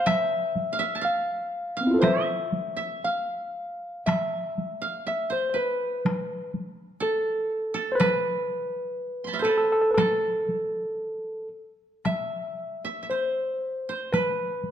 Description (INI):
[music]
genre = japanese traditional, Japanese chamber music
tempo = 57-62 BPM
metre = 2/4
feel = rubato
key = A hirajoshi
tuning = A4 = 440 Hz
[part]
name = barky tine electric piano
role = melody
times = 0.0-14.7 s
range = B3 to F5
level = -26 LUFS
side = equal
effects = overdrive
[part]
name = koto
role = second line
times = 0.0-14.7 s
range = A4 to C6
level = -32 LUFS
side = right 5 dB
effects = none
[part]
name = taiko ensemble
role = percussion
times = 0.1-14.7 s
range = none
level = -29 LUFS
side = equal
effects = none
[sound]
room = wet recital hall reverb, RT60 1.8 s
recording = dark, warm production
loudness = -24 LUFS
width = side -9 dB against mid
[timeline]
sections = 0.0-12.1 A section; 12.1-14.7 B section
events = none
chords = none